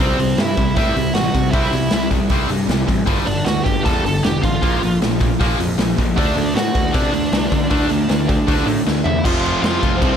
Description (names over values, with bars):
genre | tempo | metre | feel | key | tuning
punk rock | 156 BPM | 4/4 | straight | unclear | A4 = 439 Hz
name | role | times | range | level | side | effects
smooth overdriven lead guitar | melody | 0.0-10.2 s | C4 to A5 | -23 LUFS | right 3 dB | digital delay
distorted electric guitar | riff | 0.0-10.2 s | F2 to D4 | -23 LUFS | right 14 dB | overdrive
tight distorted guitar | riff | 0.0-10.2 s | F2 to D4 | -22 LUFS | left 12 dB | distortion
fuzz picked electric bass | bass | 0.0-10.2 s | E1 to D3 | -23 LUFS | equal | overdrive
raw garage drum kit | drums | 0.0-10.1 s | crash cymbal, hi-hat, kick drum, snare drum, toms | -20 LUFS | equal | none
room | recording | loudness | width
light reverb | none | -15 LUFS | side -8 dB against mid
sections
0.0-9.2 A section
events
drum fill 8.9-9.2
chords
0.0 C; 3.1 G5; 4.6 Bb5; 6.2 D; 9.2 F5